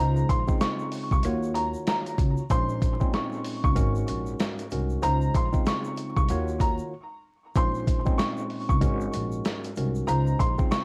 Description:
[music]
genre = hip hop, boom-bap hip-hop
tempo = 95 BPM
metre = 4/4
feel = swing 60% on 16ths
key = Bb minor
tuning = A4 = 438 Hz
[part]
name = warm upright piano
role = melody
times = 0.0-10.8 s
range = Bb5 to Db6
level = -33 LUFS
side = equal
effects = high-pass filter, low-pass filter, cassette tape, tape echo
[part]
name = tine electric piano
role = accompaniment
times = 0.0-10.8 s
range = Ab2 to Db5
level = -34 LUFS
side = equal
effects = cassette tape, high-pass filter, low-pass filter
[part]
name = upright bass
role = bass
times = 0.0-10.5 s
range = Ab1 to Eb2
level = -30 LUFS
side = equal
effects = none
[part]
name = egg shaker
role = percussion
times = 0.2-10.8 s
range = none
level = -56 LUFS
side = equal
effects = none
[part]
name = dusty soul sampler-style drum kit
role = drums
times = 0.3-10.8 s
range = hi-hat, kick drum, snare drum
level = -28 LUFS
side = equal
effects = none
[sound]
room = little or no reverb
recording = home recording on cassette, vinyl crackle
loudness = -26 LUFS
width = mono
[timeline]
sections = 0.0-7.6 A section; 7.6-10.8 A section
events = break 6.9-7.6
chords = 0.0 Dbmaj7; 1.2 Ebm9; 2.5 Bbm11; 3.8 Ab9sus4; 5.0 Dbmaj7; 6.3 Ebm9; 7.6 Bbm11; 8.8 Ab9sus4; 10.1 Dbmaj7

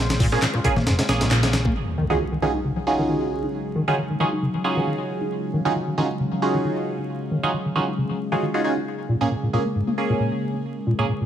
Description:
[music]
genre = breakbeat, breaks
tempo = 135 BPM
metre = 4/4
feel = swing 54% on 16ths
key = unclear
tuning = A4 = 440 Hz
[part]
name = lush unison pad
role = sustained chords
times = 0.0-11.3 s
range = Db3 to F5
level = -29 LUFS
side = left 1 dB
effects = chorus, sidechain pumping
[part]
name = band-passed chord stab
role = stabs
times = 0.0-11.1 s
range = Bb3 to Ab4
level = -24 LUFS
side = right 2 dB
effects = phaser, ping-pong delay
[part]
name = hollow-body short-scale picked electric bass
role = bass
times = 0.0-1.7 s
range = F1 to Bb1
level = -23 LUFS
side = equal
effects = tube saturation
[part]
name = breakbeat sampler-style drum kit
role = drums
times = 0.1-1.8 s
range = hi-hat, kick drum, snare drum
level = -23 LUFS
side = equal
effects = small room ambience
[part]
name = congas and bongos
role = percussion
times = 0.1-1.7 s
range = none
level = -30 LUFS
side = left 2 dB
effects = none
[part]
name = deep acid bass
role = riff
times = 0.2-11.3 s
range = Ab2 to Gb4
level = -26 LUFS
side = left 1 dB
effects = lush chorus, cassette tape, ping-pong delay
[part]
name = electronic handclaps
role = drums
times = 0.4-1.4 s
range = none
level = -30 LUFS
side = equal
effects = small room ambience
[part]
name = impact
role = sound effects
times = 1.8-3.5 s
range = none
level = -31 LUFS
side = equal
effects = none
[sound]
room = moderate plate reverb, RT60 1.6 s, digital ambience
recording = vinyl crackle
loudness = -20 LUFS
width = side -10 dB against mid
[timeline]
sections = 0.0-1.8 A section; 1.8-11.3 B section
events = band accent 1.3; impact 1.8-3.5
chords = 0.0 Bbm7; 1.8 Ebm11; 8.9 Bbm7

